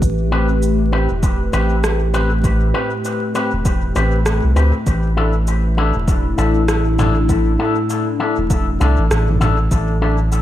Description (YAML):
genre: ambient dub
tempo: 99 BPM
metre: 4/4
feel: swing 60% on 16ths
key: A minor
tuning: A4 = 438 Hz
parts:
  - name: warbly tape-like pad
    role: sustained chords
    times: 0.0-10.4 s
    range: A2 to B4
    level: -22 LUFS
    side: equal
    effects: chorus, built-in reverb, phaser
  - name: soft dub sub bass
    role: bass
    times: 0.0-10.4 s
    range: E1 to D2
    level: -17 LUFS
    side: equal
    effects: tube saturation
  - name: electronic kick drum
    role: drums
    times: 0.0-9.9 s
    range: none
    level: -20 LUFS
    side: equal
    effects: none
  - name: organic electronic drum kit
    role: drums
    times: 0.0-10.4 s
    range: cabasa, rim click, toms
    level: -23 LUFS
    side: equal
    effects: overdrive, dub echo
  - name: electric guitar with an envelope filter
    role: stabs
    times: 0.3-10.2 s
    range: C4 to B4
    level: -21 LUFS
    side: left 3 dB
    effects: dub echo
room: light reverb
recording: vinyl crackle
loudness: -14 LUFS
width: side -12 dB against mid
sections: 0.0-10.4 A section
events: none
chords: 0.0 Am7; 4.9 Dsus2